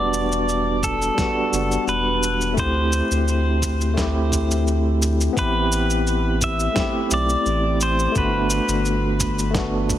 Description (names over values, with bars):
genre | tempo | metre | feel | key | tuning
sunset chillout | 86 BPM | 4/4 | straight | E minor | A4 = 440 Hz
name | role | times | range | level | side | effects
pedal steel guitar | melody | 0.0-9.5 s | A4 to E5 | -24 LUFS | equal | ping-pong delay, shimmer reverb
overdriven tine electric piano | accompaniment | 0.0-10.0 s | G3 to G4 | -23 LUFS | left 1 dB | fast tremolo, auto-pan, tape echo, shimmer reverb
round analog bass | bass | 0.0-10.0 s | E1 to D2 | -23 LUFS | equal | none
electronic shaker and snare drum | drums | 0.1-10.0 s | none | -27 LUFS | equal | none
electronic kick drum | drums | 0.8-10.0 s | none | -27 LUFS | equal | none
room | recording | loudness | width
moderate lush hall reverb, RT60 2.8 s | heavily compressed radio sound, multiband compression | -18 LUFS | side -12 dB against mid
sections
0.0-10.0 A section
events
none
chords
0.0 Em7; 2.6 D9sus4; 5.4 Am9; 8.2 Gmaj7